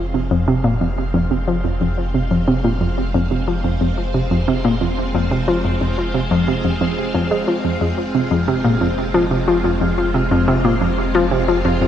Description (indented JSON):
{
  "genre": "ambient, sequencer-driven space music",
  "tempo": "90 BPM",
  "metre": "4/4",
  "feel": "straight",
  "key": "F minor",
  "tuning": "A4 = 440 Hz",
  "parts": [
    { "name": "string machine, full ensemble", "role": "sustained chords", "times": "0.0-11.9 s", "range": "Ab3 to F5", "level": "-24 LUFS", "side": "equal", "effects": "phaser, ensemble chorus, shimmer reverb" },
    { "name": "warm sub bass", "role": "bass", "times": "0.0-11.9 s", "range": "F1", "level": "-25 LUFS", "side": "equal", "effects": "tube saturation" },
    { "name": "analog pluck", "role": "riff", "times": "0.1-11.9 s", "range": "F2 to Ab3", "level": "-17 LUFS", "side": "equal", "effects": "chorus, tape echo, shimmer reverb" }
  ],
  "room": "moderate spring reverb, RT60 2.4 s",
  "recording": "echo-heavy mix",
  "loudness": "-16 LUFS",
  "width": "side -10 dB against mid",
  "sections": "0.0-11.9 A section",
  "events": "fade-in on string machine 0.0-11.9",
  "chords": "0.0 Fm",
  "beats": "0.14 0.81 1.48 | 2.15 2.81 3.48 4.14 | 4.81 5.48 6.14 6.81 | 7.48 8.14 8.81 9.48 | 10.14 10.81 11.48"
}